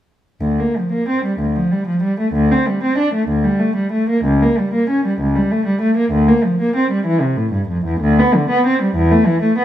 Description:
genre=classical, baroque-style suite movement for unaccompanied cello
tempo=64 BPM (dotted quarters)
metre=6/8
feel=rubato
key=D minor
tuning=A4 = 440 Hz
part: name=dark cello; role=solo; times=0.4-9.6 s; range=C#2 to D4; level=-14 LUFS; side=equal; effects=none
room=light reverb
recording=close, detailed microphones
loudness=-14 LUFS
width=side -11 dB against mid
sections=0.4-9.6 A section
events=none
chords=none

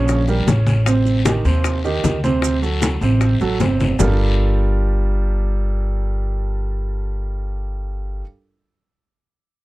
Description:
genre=Afro-Cuban jazz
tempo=154 BPM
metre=4/4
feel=straight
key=G minor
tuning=A4 = 440 Hz
part: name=warm concert grand piano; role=accompaniment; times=0.0-8.2 s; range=C3 to Db5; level=-22 LUFS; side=right 4 dB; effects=none
part: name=upright bass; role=bass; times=0.0-8.2 s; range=G1 to Eb2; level=-19 LUFS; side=equal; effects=none
part: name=bongos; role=percussion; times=0.1-4.1 s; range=none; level=-24 LUFS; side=left 6 dB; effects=none
part: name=congas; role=percussion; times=0.1-4.1 s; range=none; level=-22 LUFS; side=left 1 dB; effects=none
part: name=guiro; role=percussion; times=0.1-4.1 s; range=none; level=-32 LUFS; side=left 6 dB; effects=none
part: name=maracas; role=percussion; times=0.1-4.1 s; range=none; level=-32 LUFS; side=right 13 dB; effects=none
room=little or no reverb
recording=dry, close 1970s-style studio recording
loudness=-16 LUFS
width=side -18 dB against mid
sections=0.0-4.0 A section; 4.0-7.1 B section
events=none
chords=0.0 Eb7 (rootless); 0.9 Am7b5; 2.4 D7; 4.0 Gm9

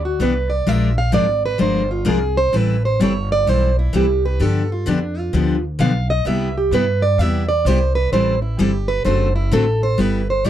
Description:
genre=acoustic string swing (jazz manouche)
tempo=129 BPM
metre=4/4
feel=swing 64% on 8ths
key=unclear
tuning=A4 = 443 Hz
part: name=picked plugged-in steel-string acoustic guitar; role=melody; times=0.0-10.5 s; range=D4 to E#5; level=-20 LUFS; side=right 3 dB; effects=none
part: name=upright bass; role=bass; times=0.0-10.5 s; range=F#1 to G2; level=-20 LUFS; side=equal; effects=none
part: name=picked steel-string acoustic guitar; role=accompaniment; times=0.2-10.5 s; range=C3 to A#4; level=-20 LUFS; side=left 3 dB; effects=none
room=little or no reverb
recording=dry, close 1970s-style studio recording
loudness=-16 LUFS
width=side -11 dB against mid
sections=0.0-10.5 A section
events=steel-string acoustic guitar solo 0.0-10.5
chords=0.0 Em7; 0.7 A#13; 2.5 Am7; 4.4 G7; 6.3 Cmaj7; 8.1 Am7; 9.1 D7; 10.0 G6

